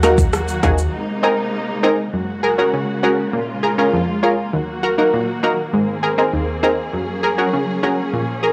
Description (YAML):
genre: dancehall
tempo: 100 BPM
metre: 4/4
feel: straight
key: unclear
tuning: A4 = 440 Hz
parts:
  - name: punchy chord stab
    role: accompaniment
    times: 0.0-8.5 s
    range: Eb2 to Bb4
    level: -20 LUFS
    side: equal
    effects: chorus
  - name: warm symphonic string section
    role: sustained chords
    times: 0.0-8.5 s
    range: C3 to Ab4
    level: -26 LUFS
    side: equal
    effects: sidechain pumping
  - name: short 808-style bass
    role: bass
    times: 0.0-0.9 s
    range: Eb2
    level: -22 LUFS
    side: equal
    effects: none
  - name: afro-pop drum kit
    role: drums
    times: 0.0-0.9 s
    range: hi-hat, kick drum, rim click, shaker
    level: -20 LUFS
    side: equal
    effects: none
  - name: egg shaker and timbales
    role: percussion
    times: 0.0-0.9 s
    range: none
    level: -34 LUFS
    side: equal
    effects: none
room: light reverb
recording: dry, gritty hardware recording, transformer saturation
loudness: -19 LUFS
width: mono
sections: 0.0-2.1 A section; 2.1-8.5 B section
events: break 0.9-2.1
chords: 0.0 Ebm; 0.9 Abadd9; 2.1 Gbadd9; 3.3 Bbm7; 4.5 Ebm; 5.7 Abadd9; 6.9 Gbadd9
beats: 0.33 0.93 1.53 | 2.13 2.73 3.33 3.93 | 4.53 5.13 5.73 6.33 | 6.93 7.53 8.13